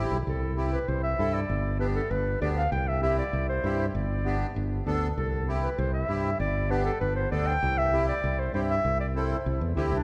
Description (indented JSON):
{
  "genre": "latin, cumbia",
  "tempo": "196 BPM",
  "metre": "4/4",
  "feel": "straight",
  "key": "C major",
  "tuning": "A4 = 444 Hz",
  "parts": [
    { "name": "accordion", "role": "accompaniment", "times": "0.0-10.0 s", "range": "B3 to A4", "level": "-35 LUFS", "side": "equal", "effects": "light tremolo tuning" },
    { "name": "fingered electric bass", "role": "bass", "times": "0.0-10.0 s", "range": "G1 to G2", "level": "-31 LUFS", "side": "equal", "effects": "none" },
    { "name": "clear clarinet", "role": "melody", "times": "0.3-10.0 s", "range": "D4 to G5", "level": "-33 LUFS", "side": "equal", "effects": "none" }
  ],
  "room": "wet church reverb, RT60 3.3 s",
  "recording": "recorded in a church or concert hall",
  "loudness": "-28 LUFS",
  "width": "mono",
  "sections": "0.3-10.0 A section",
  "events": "none",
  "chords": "0.3 C; 1.5 G; 2.7 C; 3.9 G; 5.2 C; 6.4 G; 7.6 C"
}